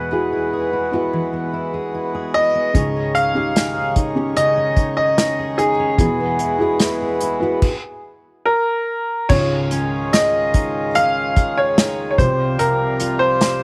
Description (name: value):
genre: pop ballad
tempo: 74 BPM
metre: 4/4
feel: straight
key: unclear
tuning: A4 = 439 Hz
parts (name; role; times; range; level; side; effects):
- clear concert grand piano; melody; 0.0-13.6 s; Ab4 to F5; -22 LUFS; equal; slapback echo
- felt-muted upright piano; accompaniment; 0.0-13.6 s; C2 to B4; -27 LUFS; equal; none
- pedal harmonium; sustained chords; 0.0-13.6 s; C3 to Db5; -28 LUFS; equal; none
- fingerpicked steel-string acoustic guitar; arpeggios; 0.0-13.6 s; C3 to C5; -28 LUFS; equal; none
- unplugged drum kit; drums; 2.7-13.6 s; crash cymbal, hi-hat, kick drum, snare drum; -20 LUFS; equal; none
room: light reverb, studio ambience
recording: none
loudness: -19 LUFS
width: mono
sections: 0.0-9.3 A section; 9.3-13.6 B section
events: stop 7.6-9.3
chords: 0.0 Eadd9; 2.7 Dbsus2; 6.0 Eadd9; 7.6 N.C.; 9.3 Dbadd9; 12.2 Fsus2/C